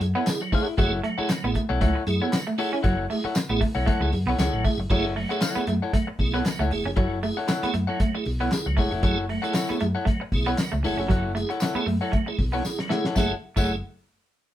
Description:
funk; 116 BPM; 4/4; swing 56% on 16ths; F# minor; A4 = 441 Hz
electric guitar at the edge of break-up; accompaniment; 0.0-13.7 s; E4 to F#5; -29 LUFS; left 4 dB
tonewheel organ; stabs; 0.0-13.8 s; F#3 to G#4; -30 LUFS; right 4 dB; chorus vibrato, slow rotary speaker
hollow-body short-scale fingered electric bass; bass; 0.0-13.8 s; E1 to F#2; -28 LUFS; equal
cloth-damped thuddy drum kit; drums; 0.0-13.7 s; crash cymbal, handclaps, hi-hat, kick drum, snare drum; -25 LUFS; equal
electric guitar at the edge of break-up; riff; 0.2-13.7 s; F#3 to C#4; -29 LUFS; right 3 dB; tremolo
tambourine; percussion; 0.3-13.8 s; -36 LUFS; left 1 dB
moderate small room ambience, RT60 0.5 s; band playing live in one room; -22 LUFS; side -12 dB against mid
0.0-4.9 A section; 4.9-13.2 B section; 13.2-14.5 C section
drum fill 12.6-13.2
0.0 F#m7
0.27 | 0.78 1.30 1.81 2.33 | 2.84 3.36 3.87 4.39 | 4.91 5.42 5.94 6.45 | 6.97 7.49 8.00 8.52 | 9.03 9.55 10.06 10.58 | 11.10 11.61 12.13 12.64 | 13.16 13.68

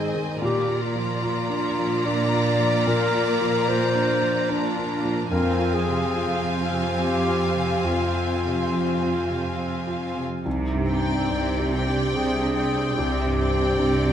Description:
cinematic; 72 BPM; 3/4; uneven beats, rubato; C minor from 10.5 s; A4 = 440 Hz
rich studio violin section; second line; 0.0-14.1 s; D5 to Bb5; -29 LUFS; left 2 dB
rich studio viola section; accompaniment; 0.0-14.1 s; Bb3 to Ab4; -30 LUFS; right 1 dB
warm grand piano; accompaniment; 0.0-14.1 s; C2 to G5; -27 LUFS; equal
bright studio cello section; bass; 0.0-14.1 s; F2 to C3; -28 LUFS; right 4 dB
mellow clarinet; second line; 0.4-14.1 s; D4 to D5; -26 LUFS; left 2 dB
rich studio double bass section; bass; 10.5-14.1 s; C2; -28 LUFS; right 2 dB
rich studio violin section; melody; 10.9-14.1 s; G5; -30 LUFS; left 4 dB
moderate concert hall reverb, RT60 1.8 s; -21 LUFS; side -9 dB against mid
0.0-10.5 A section; 10.5-14.1 B section
0.4 Bb; 5.3 Fm; 10.5 Cmadd9
| 0.41 1.21 2.05 | 2.87 3.68 4.50 | 5.32 6.16 7.00 | 7.86 8.73 9.59 | 10.46 11.31 12.15 | 12.97 13.79

